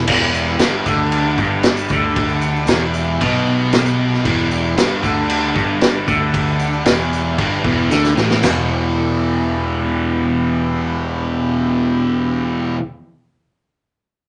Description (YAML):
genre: psychedelic rock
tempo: 115 BPM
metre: 4/4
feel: straight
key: E minor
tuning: A4 = 441 Hz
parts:
  - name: overdriven combo organ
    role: sustained chords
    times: 0.0-12.8 s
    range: E3 to G4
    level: -30 LUFS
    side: equal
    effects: none
  - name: fuzz guitar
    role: riff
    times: 0.0-12.8 s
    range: E2 to E3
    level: -20 LUFS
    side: equal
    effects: distortion, phaser
  - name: fuzz picked electric bass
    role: bass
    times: 0.0-12.8 s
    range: E1 to D2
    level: -26 LUFS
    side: equal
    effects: overdrive
  - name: vintage drum kit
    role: drums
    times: 0.1-8.6 s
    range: crash cymbal, kick drum, snare drum, splash cymbal, toms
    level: -21 LUFS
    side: equal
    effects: none
  - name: tambourine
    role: percussion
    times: 0.2-8.7 s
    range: none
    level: -39 LUFS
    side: equal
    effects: none
room: moderate club reverb, RT60 0.7 s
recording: nothing above 10.4 kHz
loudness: -17 LUFS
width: mono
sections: 0.1-8.4 A section; 8.4-12.6 B section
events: drum fill 7.9-8.4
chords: 0.1 Em